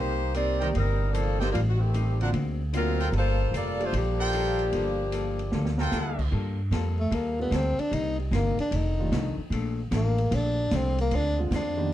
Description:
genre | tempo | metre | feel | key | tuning
jazz, big band swing | 150 BPM | 4/4 | swing 66% on 8ths | G minor | A4 = 440 Hz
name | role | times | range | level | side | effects
mellow saxophone section | melody | 0.0-5.9 s | Eb3 to D5 | -29 LUFS | left 1 dB | plate reverb
archtop guitar, miked and amplified | accompaniment | 0.0-11.8 s | F2 to A4 | -36 LUFS | left 5 dB | none
upright bass | bass | 0.0-11.9 s | F1 to G2 | -27 LUFS | equal | none
open jazz drum kit | drums | 0.3-11.6 s | crash cymbal, hi-hat, kick drum, ride cymbal, snare drum | -37 LUFS | right 1 dB | none
warm concert grand piano | accompaniment | 0.6-5.0, 7.4-11.9 s | D3 to A4 | -34 LUFS | right 2 dB | none
clear trumpet section | stabs | 0.6-6.3 s | D4 to G5 | -32 LUFS | right 2 dB | none
breathy tenor saxophone | melody | 7.0-11.9 s | G3 to Eb4 | -28 LUFS | left 1 dB | plate reverb
room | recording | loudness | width
light reverb | dark, warm production | -24 LUFS | side -13 dB against mid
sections
0.0-6.3 A section; 6.3-11.9 B section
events
drum fill 5.5-5.9; tenor saxophone solo 6.3-11.9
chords
0.0 Cm7; 1.5 Am7b5; 2.3 D7alt; 3.1 Gm9; 7.9 Cm7; 8.7 F13; 9.5 Bbmaj7; 11.1 Dm7b5

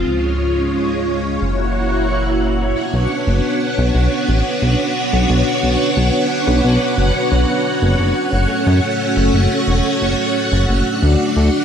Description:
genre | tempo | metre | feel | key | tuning
synthwave | 89 BPM | 4/4 | straight | B minor | A4 = 440 Hz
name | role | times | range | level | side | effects
string machine, full ensemble | sustained chords | 0.0-11.6 s | Ab3 to Gb5 | -16 LUFS | equal | ensemble chorus
chorused synth bass | bass | 0.0-11.5 s | E1 to F#2 | -16 LUFS | equal | none
room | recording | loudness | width
moderate lush hall reverb, RT60 2.6 s | bright 1980s-style digital production | -14 LUFS | side -8 dB against mid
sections
0.0-2.8 A section; 2.8-11.6 B section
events
none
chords
0.1 Db; 1.4 Gb7; 2.8 Bmadd9; 8.2 F#m; 10.9 D

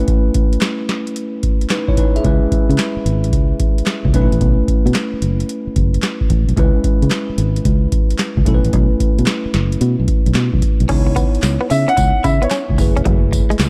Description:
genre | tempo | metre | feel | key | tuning
R&B, new jack swing | 111 BPM | 4/4 | swing 67% on 16ths | C# minor | A4 = 440 Hz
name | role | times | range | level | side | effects
bell-like tine electric piano | accompaniment | 0.0-13.7 s | G#3 to E5 | -24 LUFS | equal | none
booming analog drum machine | drums | 0.1-13.7 s | crash cymbal, handclaps, hi-hat, kick drum, snare drum, tambourine | -19 LUFS | equal | none
fingered electric bass | bass | 2.2-13.7 s | E1 to C#3 | -19 LUFS | equal | none
direct-recorded clean electric guitar | riff | 10.9-13.6 s | F#3 to E4 | -26 LUFS | equal | analog chorus
warm grand piano | melody | 11.7-12.8 s | C#5 to F#5 | -21 LUFS | equal | delay
room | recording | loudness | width
digital ambience | dark, warm production | -16 LUFS | mono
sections
0.0-10.9 A section; 10.9-13.7 B section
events
none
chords
0.0 B9sus4; 2.2 C#m7; 4.1 B9sus4; 6.6 C#m7; 8.5 B9sus4; 10.9 C#m9; 12.8 F#m11

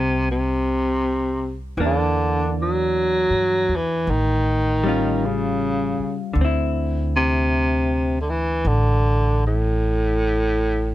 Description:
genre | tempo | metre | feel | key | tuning
jazz ballad | 52 BPM | 4/4 | swing 68% on 8ths | unclear | A4 = 440 Hz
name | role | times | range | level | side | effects
mellow baritone saxophone | melody | 0.0-10.9 s | A2 to Gb3 | -21 LUFS | equal | none
vintage hollow-body jazz guitar | accompaniment | 0.0-10.9 s | D3 to G4 | -26 LUFS | left 1 dB | none
upright bass | bass | 0.0-10.9 s | A1 to G2 | -23 LUFS | equal | none
room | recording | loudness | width
little or no reverb | close, detailed microphones | -18 LUFS | side -15 dB against mid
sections
0.0-10.9 A section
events
none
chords
0.0 F69 (rootless); 1.8 Em7b5; 4.1 Aaug7; 6.4 Dsus2

